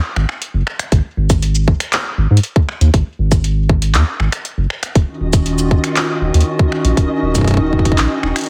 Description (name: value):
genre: IDM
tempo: 119 BPM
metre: 4/4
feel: straight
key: unclear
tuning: A4 = 440 Hz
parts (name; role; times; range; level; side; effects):
- round analog bass; bass; 0.2-8.3 s; D#1 to G#2; -17 LUFS; equal; tube saturation
- electro analog drum machine; drums; 0.2-8.5 s; cabasa, finger snaps, handclaps, hi-hat; -23 LUFS; equal; tape echo
- electronic kick drum; drums; 0.9-8.0 s; none; -15 LUFS; equal; none
- warbly tape-like pad; sustained chords; 5.1-8.5 s; D#3 to F#4; -21 LUFS; equal; chorus, built-in reverb
- flickering grainy texture; texture; 5.1-8.5 s; D#4 to D#5; -28 LUFS; equal; built-in reverb
room: light reverb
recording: heavily compressed radio sound, multiband compression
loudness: -15 LUFS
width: mono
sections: 0.0-8.5 A section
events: none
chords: 0.0 G#5; 5.0 D#m9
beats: 0.42 | 0.92 1.43 1.93 2.43 | 2.94 3.44 3.95 4.45 | 4.96 5.46 5.96 6.47 | 6.97 7.48 7.98 8.48